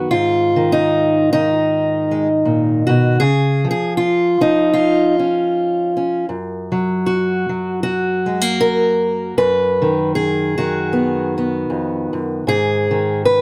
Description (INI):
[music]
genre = folk, solo fingerstyle acoustic guitar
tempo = 78 BPM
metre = 4/4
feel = swing 57% on 8ths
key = unclear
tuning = A4 = 439 Hz
[part]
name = fingerpicked acoustic archtop guitar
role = solo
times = 0.0-13.4 s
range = F2 to B4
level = -17 LUFS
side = equal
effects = none
[sound]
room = light reverb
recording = none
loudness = -17 LUFS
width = mono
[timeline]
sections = 0.0-13.4 A section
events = none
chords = 0.1 Absus2; 3.2 Db; 6.3 Gb; 9.4 B/F#; 12.5 Abm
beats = | 0.11 0.88 1.65 2.42 | 3.20 3.97 4.74 5.51 | 6.28 7.06 7.83 8.60 | 9.37 10.14 10.92 11.69 | 12.46 13.23